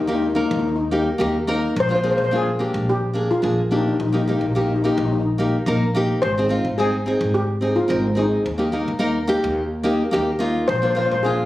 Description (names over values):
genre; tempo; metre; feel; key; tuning
calypso; 107 BPM; 4/4; straight; Eb major; A4 = 440 Hz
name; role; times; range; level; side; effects
steel pan; melody; 0.0-11.5 s; Eb4 to C5; -22 LUFS; left 2 dB; none
upright bass; bass; 0.0-11.5 s; Ab1 to Eb2; -25 LUFS; equal; none
nylon-string guitar; accompaniment; 0.1-11.4 s; Bb3 to Bb4; -21 LUFS; equal; none
room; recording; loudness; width
light reverb; recorded on a phone in the room, studio reverb, compression; -18 LUFS; side -15 dB against mid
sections
0.0-11.5 A section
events
none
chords
0.0 Eb; 1.8 Bb; 4.0 Eb/Bb; 6.2 Ab; 8.5 Eb; 10.7 Bb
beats
0.08 0.64 1.20 | 1.75 2.31 2.87 3.43 | 3.99 4.55 5.11 5.66 | 6.22 6.78 7.34 7.90 | 8.46 9.02 9.58 10.13 | 10.69 11.25